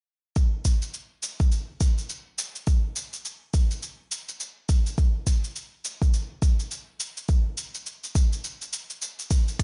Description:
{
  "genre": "downtempo",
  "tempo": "104 BPM",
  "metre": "4/4",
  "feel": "swing 59% on 16ths",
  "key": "none",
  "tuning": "none",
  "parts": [
    { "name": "electronic kick drum", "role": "drums", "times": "0.4-9.6 s", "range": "none", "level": "-24 LUFS", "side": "equal", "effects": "none" },
    { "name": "electronic shaker and hi-hat", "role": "drums", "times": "0.4-9.6 s", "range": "none", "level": "-35 LUFS", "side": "equal", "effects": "none" }
  ],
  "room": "little or no reverb",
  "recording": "nothing above 11.0 kHz",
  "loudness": "-27 LUFS",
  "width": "mono",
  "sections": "0.4-9.6 A section",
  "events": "none",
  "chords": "none",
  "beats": "| 0.36 0.94 1.52 2.09 | 2.67 3.25 3.82 4.40 | 4.98 5.55 6.13 6.71 | 7.29 7.86 8.44 9.02 | 9.59"
}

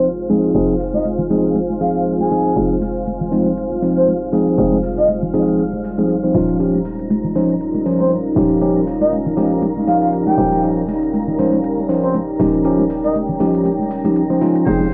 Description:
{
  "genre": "deep house",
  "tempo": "119 BPM",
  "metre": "4/4",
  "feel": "swing 56% on 16ths",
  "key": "unclear",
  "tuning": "A4 = 441 Hz",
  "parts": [
    { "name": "breathy flute-like synth lead", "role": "melody", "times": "0.0-13.2 s", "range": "C5 to Ab5", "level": "-22 LUFS", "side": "equal", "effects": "chorus, cassette tape, tape echo" },
    { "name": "deep dark ambient pad", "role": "sustained chords", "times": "0.0-14.9 s", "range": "G3 to C5", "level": "-26 LUFS", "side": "equal", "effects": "chorus, built-in reverb, cassette tape" },
    { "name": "bell-like tine electric piano", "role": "stabs", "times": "0.0-14.8 s", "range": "F3 to C5", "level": "-19 LUFS", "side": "equal", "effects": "low-pass filter, cassette tape, analog delay" },
    { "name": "hollow knocking FM bass", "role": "bass", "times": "0.0-14.9 s", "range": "Eb1 to F1", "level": "-30 LUFS", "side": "equal", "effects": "none" },
    { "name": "electronic hi-hat and shaker", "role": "drums", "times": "0.0-14.9 s", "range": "none", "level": "-49 LUFS", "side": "equal", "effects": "overdrive, low-pass filter on hats, studio reverb, cassette tape, low-pass filter on perc, low-pass filter on snare" },
    { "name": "ethereal airy pad", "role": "texture", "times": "0.1-14.9 s", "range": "C4 to Ab5", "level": "-27 LUFS", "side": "equal", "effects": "ensemble chorus, built-in reverb, cassette tape" },
    { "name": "string machine, violins", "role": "texture", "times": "0.0-14.9 s", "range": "F5 to Bb6", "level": "-39 LUFS", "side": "equal", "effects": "ensemble chorus, cassette tape" },
    { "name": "congas", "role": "percussion", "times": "0.3-14.9 s", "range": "none", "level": "-26 LUFS", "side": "equal", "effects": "none" },
    { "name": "trumpet with metal mute", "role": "melody", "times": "14.7-14.9 s", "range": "C5", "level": "-31 LUFS", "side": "equal", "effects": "cassette tape" }
  ],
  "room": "wet booth ambience, RT60 0.2 s",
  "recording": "home recording on cassette, vinyl crackle, low-pass filter",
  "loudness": "-17 LUFS",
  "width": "mono",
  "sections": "0.0-14.9 A section",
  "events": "filter sweep on drum 0.0-14.9; filter sweep on tine electric piano 0.0-14.9; filter sweep 0.0-14.9",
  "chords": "0.0 Fm7; 6.3 Eb9",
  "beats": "0.04 | 0.55 1.05 1.56 2.06 | 2.56 3.07 3.57 4.08 | 4.58 5.08 5.59 6.09 | 6.60 7.10 7.61 8.11 | 8.62 9.12 9.62 10.13 | 10.63 11.14 11.64 12.14 | 12.65 13.15 13.66 14.16 | 14.66"
}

